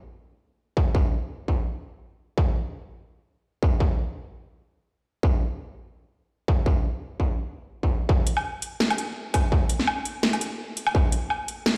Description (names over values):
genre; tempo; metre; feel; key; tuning
drum and bass; 168 BPM; 4/4; swing 56% on 16ths, half-time; none; none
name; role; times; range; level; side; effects
electronic kick drum; drums; 0.8-11.0 s; none; -24 LUFS; equal; distortion
drum and bass drum kit; drums; 8.3-11.7 s; hi-hat, snare drum, woodblock; -28 LUFS; equal; none
room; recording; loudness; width
light reverb; played on a big sound system in a bare room, stone room reverb; -26 LUFS; mono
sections
0.0-8.1 A section; 8.1-11.8 B section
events
drop 8.1-11.8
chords
none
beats
0.23 0.59 | 0.95 1.30 1.66 2.02 | 2.38 2.73 3.09 3.45 | 3.80 4.16 4.52 4.88 | 5.23 5.59 5.95 6.30 | 6.66 7.02 7.38 7.73 | 8.09 8.45 8.80 9.16 | 9.52 9.88 10.23 10.59 | 10.95 11.30 11.66